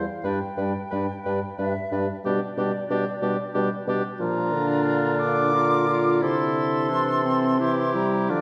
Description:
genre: classical, slow romantic movement for wind quintet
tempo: 85-94 BPM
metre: 3/4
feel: rubato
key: unclear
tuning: A4 = 440 Hz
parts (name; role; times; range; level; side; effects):
- silver concert flute; melody; 0.0-8.4 s; D5 to D6; -31 LUFS; equal; none
- warm oboe; second line; 0.0-8.4 s; F4 to B4; -33 LUFS; equal; none
- bright clarinet; accompaniment; 0.0-8.4 s; C4 to F4; -31 LUFS; equal; none
- warm French horn; accompaniment; 0.0-8.4 s; D3 to G3; -30 LUFS; equal; none
- mellow bassoon; bass; 0.0-8.4 s; G2 to D3; -30 LUFS; equal; none
room: wet scoring stage reverb, RT60 1.6 s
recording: heard from further back in the room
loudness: -24 LUFS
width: mono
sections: 0.0-8.4 A section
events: none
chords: 0.2 G; 2.2 G/B; 4.2 Bb; 6.2 Cadd9

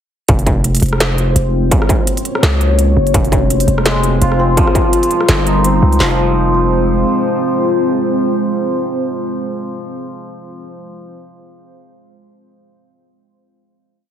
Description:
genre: half-time drum and bass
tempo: 168 BPM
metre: 4/4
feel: swing 56% on 16ths, half-time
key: F minor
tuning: A4 = 438 Hz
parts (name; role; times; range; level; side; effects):
- deep dark ambient pad; sustained chords; 0.8-9.6 s; G3 to Db5; -17 LUFS; equal; chorus, built-in reverb, sidechain pumping
- long sustained 808-style bass; bass; 0.3-7.0 s; F1 to Db2; -14 LUFS; equal; none
- industrial drum kit; drums; 0.3-6.1 s; handclaps, kick drum, snare drum; -14 LUFS; equal; distortion
- industrial drum kit; drums; 0.3-6.0 s; hi-hat, rim click, snare drum; -19 LUFS; equal; none
- santur; arpeggios; 3.9-11.1 s; F3 to F4; -19 LUFS; left 1 dB; digital delay
room: light reverb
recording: heavily compressed radio sound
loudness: -12 LUFS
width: side -9 dB against mid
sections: 0.3-6.0 drop; 6.0-8.9 final chord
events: drop 0.3-6.0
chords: 0.3 Fm; 1.7 Gb; 3.1 Fm; 4.6 Ebadd9; 6.0 Fm

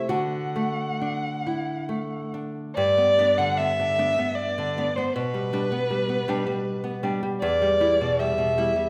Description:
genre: romantic duo for violin and classical guitar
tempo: 65-80 BPM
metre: 3/4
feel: rubato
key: G major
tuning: A4 = 440 Hz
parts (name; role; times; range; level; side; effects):
- rich violin; melody; 0.0-8.9 s; B4 to F#5; -26 LUFS; equal; none
- nylon-string guitar; accompaniment; 0.0-8.9 s; E2 to F#4; -29 LUFS; equal; none
room: wet recital hall reverb, RT60 1.5 s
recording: recorded in a church or concert hall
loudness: -25 LUFS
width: mono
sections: 0.0-2.8 A section; 2.8-8.9 B section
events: none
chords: 0.1 D; 2.8 G; 5.1 G/B; 7.4 Em

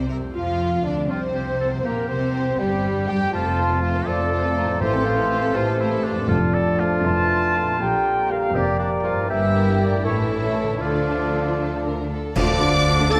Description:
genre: classical, dramatic, fast romantic movement for symphony orchestra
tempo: 80 BPM (dotted quarters)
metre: 6/8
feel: straight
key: F major, D minor from 6.3 s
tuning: A4 = 439 Hz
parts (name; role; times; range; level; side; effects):
- warm symphonic violin section; melody; 0.0-13.2 s; G4 to A6; -32 LUFS; equal; none
- clear symphonic violin section; second line; 0.0-13.2 s; G3 to A5; -37 LUFS; equal; none
- dark clarinet; second line; 0.0-13.2 s; G3 to Bb4; -33 LUFS; equal; none
- dark symphonic viola section; accompaniment; 0.0-13.2 s; E3 to A4; -36 LUFS; equal; none
- mellow bassoon; accompaniment; 0.0-13.2 s; D3 to G4; -33 LUFS; equal; none
- dark French horn section; sustained chords; 0.0-13.2 s; D3 to G4; -33 LUFS; equal; none
- concert harp; arpeggios; 0.0-13.2 s; E2 to C5; -34 LUFS; equal; none
- warm symphonic cello section; bass; 0.0-13.2 s; F2 to G3; -29 LUFS; equal; none
- warm symphonic double bass section; bass; 0.0-13.2 s; F1 to G2; -29 LUFS; equal; none
- dark trumpet section; stabs; 0.1-13.2 s; D4 to A5; -29 LUFS; equal; none
- mellow large flute ensemble; second line; 0.3-13.2 s; G4 to C6; -34 LUFS; equal; none
- warm oboe; second line; 1.1-13.2 s; D4 to D5; -31 LUFS; equal; none
- timpani; percussion; 4.8-5.5, 12.4-13.1 s; A2 to D3; -32 LUFS; equal; none
- clash cymbals and concert bass drum; percussion; 12.4-13.2 s; none; -28 LUFS; equal; none
room: wet scoring stage reverb, RT60 1.9 s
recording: none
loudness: -21 LUFS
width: mono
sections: 0.3-12.4 A section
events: band accent 12.4-12.9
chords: 0.3 F; 1.8 C7; 3.3 F; 4.8 F/A; 6.3 Dm/F; 7.8 Bb6; 9.3 Edim/G; 10.0 A; 10.8 Dm

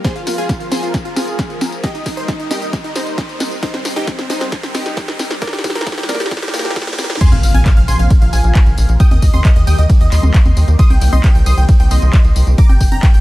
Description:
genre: uplifting trance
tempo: 134 BPM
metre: 4/4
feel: straight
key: C minor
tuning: A4 = 440 Hz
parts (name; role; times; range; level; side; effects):
- supersaw stab; melody; 0.0-13.2 s; Bb3 to Eb6; -23 LUFS; equal; sidechain pumping, digital delay
- analog string pad; sustained chords; 0.0-13.2 s; C3 to Bb4; -27 LUFS; left 1 dB; ensemble chorus, phaser, sidechain pumping
- electronic kick drum; drums; 0.0-13.1 s; none; -11 LUFS; equal; overdrive
- punchy analog drum machine; drums; 0.0-13.2 s; congas, crash cymbal, handclaps, hi-hat, ride cymbal, snare drum, tambourine; -22 LUFS; equal; overdrive, sidechain pumping on hats, sidechain pumping on perc, sidechain pumping on cymbals
- riser and impact; sound effects; 0.0-9.0 s; none; -24 LUFS; equal; none
- wide unison pluck; second line; 7.2-13.2 s; Eb5 to Eb6; -27 LUFS; equal; sidechain pumping
- tight sequencer bass; bass; 7.3-13.2 s; G1 to Eb2; -12 LUFS; equal; sidechain pumping
room: digital ambience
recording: high-pass filter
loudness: -11 LUFS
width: side -18 dB against mid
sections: 0.0-7.2 A section; 7.2-13.2 B section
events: build-up 0.0-7.2; drum fill 0.0-7.2; riser 0.0-7.2; filter sweep 0.0-7.2; drop 7.2-13.2; impact 7.2-9.0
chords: 0.0 Bbsus2; 1.8 Eb; 3.6 Cm7; 5.4 Gm; 7.2 Bbsus2; 9.0 Eb; 10.8 Cm7; 12.6 Gm

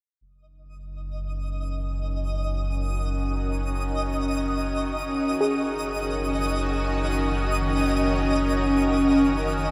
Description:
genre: ambient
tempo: free time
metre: none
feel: none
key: F# major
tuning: A4 = 440 Hz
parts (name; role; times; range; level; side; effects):
- shimmering ambient pad; sustained chords; 1.6-9.7 s; D#3 to A#4; -27 LUFS; equal; chorus, built-in reverb
- round analog bass; bass; 0.2-9.7 s; F#1; -31 LUFS; equal; none
- twinkling granular texture; texture; 1.2-9.7 s; D#5 to D#6; -33 LUFS; equal; built-in reverb
- soft round pluck; arpeggios; 5.4-8.2 s; G#4; -33 LUFS; equal; chorus, vintage 12-bit sampler grit, tape echo
room: wet huge ambient reverb, RT60 8.1 s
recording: none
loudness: -25 LUFS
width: mono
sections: 0.2-9.7 A section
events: fade-in on ambient pad 0.2-9.7; fade-in on synth texture 0.2-9.7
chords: 0.2 F#6; 5.4 D#m7/F#

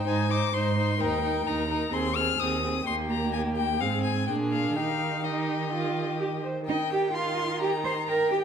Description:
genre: quick classical-period movement for string quartet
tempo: 128 BPM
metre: 4/4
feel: straight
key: Eb major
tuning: A4 = 440 Hz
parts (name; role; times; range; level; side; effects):
- rich violin; melody; 0.0-8.4 s; Eb5 to F6; -31 LUFS; left 9 dB; none
- warm violin; second line; 0.0-8.4 s; G4 to C6; -32 LUFS; left 4 dB; none
- rich viola; accompaniment; 0.0-8.4 s; Eb3 to C5; -31 LUFS; right 2 dB; none
- rich cello; bass; 0.0-8.4 s; Eb2 to C5; -29 LUFS; right 4 dB; none
room: moderate recital hall reverb, RT60 1.3 s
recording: none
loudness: -25 LUFS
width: side -7 dB against mid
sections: 0.0-6.7 A section; 6.7-8.4 B section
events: none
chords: 0.0 Ab; 1.0 Eb; 1.9 Ab/Eb; 2.9 Eb; 3.8 Fm/Ab; 4.3 Bb7; 4.8 Eb

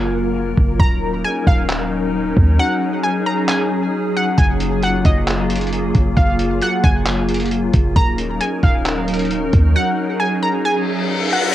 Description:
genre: hip hop, atmospheric cloud-rap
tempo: 134 BPM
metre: 4/4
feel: half-time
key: unclear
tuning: A4 = 438 Hz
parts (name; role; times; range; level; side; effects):
- glassy FM pad; sustained chords; 0.0-11.5 s; F#3 to A#4; -20 LUFS; left 1 dB; ensemble chorus, built-in reverb, sidechain pumping, cassette tape
- clean 808-style bass; bass; 0.0-9.7 s; D#1 to D#2; -20 LUFS; equal; none
- downlifter and reverse cymbal; sound effects; 0.0-0.8, 10.8-11.5 s; none; -19 LUFS; left 5 dB; none
- lo-fi sampler-style drum kit; drums; 0.6-9.6 s; handclaps, hi-hat, kick drum; -17 LUFS; equal; cassette tape
- glassy wavetable pluck; melody; 0.8-11.5 s; D#5 to A#5; -22 LUFS; equal; chorus, analog delay
room: digital ambience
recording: home recording on cassette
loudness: -15 LUFS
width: side -13 dB against mid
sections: 0.0-11.5 A section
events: break 0.0-4.4; kick muted 2.6-4.4; reverse cymbal 10.8-11.5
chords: 0.0 F#maj7; 0.8 D#m7; 4.4 F#maj9; 8.0 D#m7

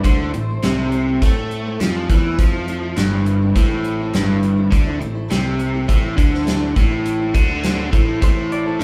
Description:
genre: classic rock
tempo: 103 BPM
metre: 4/4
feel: straight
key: A minor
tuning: A4 = 440 Hz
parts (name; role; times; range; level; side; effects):
- clean lap steel guitar; second line; 0.0-1.8, 8.2-8.8 s; A4 to D5; -33 LUFS; equal; none
- picked steel-string acoustic guitar; accompaniment; 0.0-8.8 s; A2 to C5; -33 LUFS; equal; none
- biting overdriven guitar; riff; 0.0-8.8 s; G2 to A3; -22 LUFS; equal; none
- picked electric bass; bass; 0.0-8.8 s; G1 to A2; -28 LUFS; equal; none
- gated 80s drum kit; drums; 0.0-8.8 s; hi-hat, kick drum, snare drum; -20 LUFS; equal; none
room: moderate large studio reverb, RT60 0.8 s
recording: band playing live in one room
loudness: -18 LUFS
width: mono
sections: 0.0-8.8 A section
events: none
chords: 0.0 Am

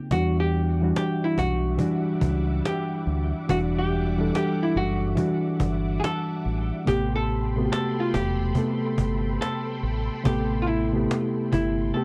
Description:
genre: lo-fi hip hop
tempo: 71 BPM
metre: 4/4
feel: swing 65% on 16ths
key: A minor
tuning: A4 = 439 Hz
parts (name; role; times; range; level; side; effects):
- archtop guitar, miked and amplified; melody; 0.0-12.0 s; E4 to A4; -32 LUFS; equal; low-pass filter, plate reverb, tape echo
- reed electric piano; accompaniment; 0.0-12.0 s; C3 to A4; -28 LUFS; equal; low-pass filter, plate reverb
- string machine, cellos; sustained chords; 0.1-12.0 s; G3 to D6; -39 LUFS; equal; ensemble chorus, low-pass filter, plate reverb
- deep dub fingered electric bass; bass; 0.1-11.9 s; E1 to E2; -29 LUFS; equal; none
- cajon; drums; 0.1-11.8 s; none; -31 LUFS; equal; none
room: light reverb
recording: worn, warbling old tape, cassette tape, warbly pitch drift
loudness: -25 LUFS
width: mono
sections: 0.0-12.0 A section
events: none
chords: 0.1 Em9; 6.9 Am9

